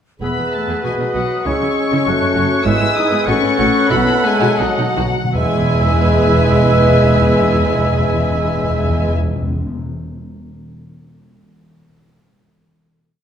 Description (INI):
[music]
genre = quick classical-period movement for symphony orchestra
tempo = 78-101 BPM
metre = 2/4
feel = rubato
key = E major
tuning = A4 = 440 Hz
[part]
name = rich chamber violin section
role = melody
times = 0.2-9.1 s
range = F#5 to E6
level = -23 LUFS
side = left 5 dB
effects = none
[part]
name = clear oboe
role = second line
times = 0.2-9.1 s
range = B4 to E5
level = -25 LUFS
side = right 1 dB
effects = none
[part]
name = mellow clarinet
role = second line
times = 0.2-9.1 s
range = F#4 to B4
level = -24 LUFS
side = right 1 dB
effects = none
[part]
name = rich chamber violin section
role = second line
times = 0.2-9.1 s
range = G#4 to G#5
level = -26 LUFS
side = left 2 dB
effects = none
[part]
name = small flute group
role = second line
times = 0.2-9.1 s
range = D#6 to F#6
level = -25 LUFS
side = right 1 dB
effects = none
[part]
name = rich studio viola section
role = accompaniment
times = 0.2-9.1 s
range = B3 to G#4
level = -25 LUFS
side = right 1 dB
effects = none
[part]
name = warm bassoon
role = accompaniment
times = 0.2-9.1 s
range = F#3 to B3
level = -23 LUFS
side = right 3 dB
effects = none
[part]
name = mellow French horn section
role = sustained chords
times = 0.2-9.1 s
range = F#3 to E4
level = -20 LUFS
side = left 3 dB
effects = none
[part]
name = rich chamber cello section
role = bass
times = 0.2-9.1 s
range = E2 to C#3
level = -23 LUFS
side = right 3 dB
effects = none
[part]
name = rich studio double bass section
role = bass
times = 0.2-9.1 s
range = E1 to C#2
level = -22 LUFS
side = right 3 dB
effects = none
[part]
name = timpani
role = percussion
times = 0.2-0.8, 4.6-9.7 s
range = E2 to B2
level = -20 LUFS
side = left 1 dB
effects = none
[sound]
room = wet recital hall reverb, RT60 1.5 s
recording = minimal, uncompressed stereo recording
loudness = -13 LUFS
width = side -8 dB against mid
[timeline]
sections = 0.2-5.4 A section; 5.4-8.4 final chord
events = slowing down 2.1-5.4; timpani fill 4.6-5.4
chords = 0.2 E; 0.8 B; 1.5 C#m; 2.1 F#m; 2.7 E/G#; 3.3 F#m/A; 3.9 B7sus4; 4.6 B7; 5.4 E